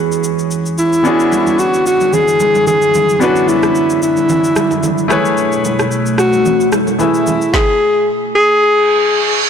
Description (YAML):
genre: amapiano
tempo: 111 BPM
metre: 4/4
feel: swing 55% on 16ths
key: unclear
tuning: A4 = 440 Hz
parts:
  - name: clear concert grand piano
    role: accompaniment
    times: 0.0-7.6 s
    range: E3 to E5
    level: -18 LUFS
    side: left 3 dB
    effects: none
  - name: deep dark ambient pad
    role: sustained chords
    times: 0.0-7.5 s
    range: B2 to C#5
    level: -19 LUFS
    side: equal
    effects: chorus, built-in reverb, sidechain pumping
  - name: deep house drum kit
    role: drums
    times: 0.1-7.7 s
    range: kick drum, rim click, shaker, snare drum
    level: -22 LUFS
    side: equal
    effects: soft clipping on snare
  - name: breathy alto saxophone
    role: melody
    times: 0.8-9.4 s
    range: E4 to G#4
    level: -13 LUFS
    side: equal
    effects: ping-pong delay
  - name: congas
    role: percussion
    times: 1.3-7.4 s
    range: none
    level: -22 LUFS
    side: right 4 dB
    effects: none
  - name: reverse cymbal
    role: sound effects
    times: 8.8-9.5 s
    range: none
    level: -15 LUFS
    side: right 6 dB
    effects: none
room: light reverb, small room ambience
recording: blown-out, overdriven recording, overdrive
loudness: -11 LUFS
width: side -7 dB against mid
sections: 0.0-9.5 A section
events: reverse cymbal 8.8-9.5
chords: 0.0 E6; 1.1 E13; 5.1 Amaj9